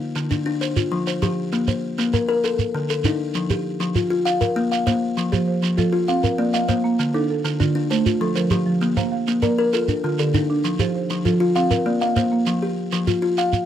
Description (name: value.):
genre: southern african traditional, mbira-style interlocking cycle.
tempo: 132 BPM (dotted quarters).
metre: 12/8.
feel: straight.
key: F mixolydian.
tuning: A4 = 444 Hz.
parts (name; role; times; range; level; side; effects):
buzzing kalimba; arpeggios; 0.0-13.7 s; D3 to F5; -20 LUFS; left 3 dB; none.
shekere; percussion; 0.2-13.7 s; none; -23 LUFS; right 5 dB; none.
buzzing marimba with medium mallets; arpeggios; 5.3-12.6 s; D3 to F5; -23 LUFS; right 5 dB; none.
room: little or no reverb.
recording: dry, close 1970s-style studio recording, faint mains hum.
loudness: -18 LUFS.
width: side -10 dB against mid.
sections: 0.0-12.5 A section; 12.5-13.7 B section.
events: none.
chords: 0.0 N.C.; 0.6 F5; 1.5 Bbsus2; 2.4 D5; 3.4 Fsus2; 4.3 Bb5; 5.2 F; 6.1 Bb; 7.0 Dm; 7.9 F; 8.8 Bb; 9.7 Dm; 10.6 F; 11.6 Bb; 12.5 F5.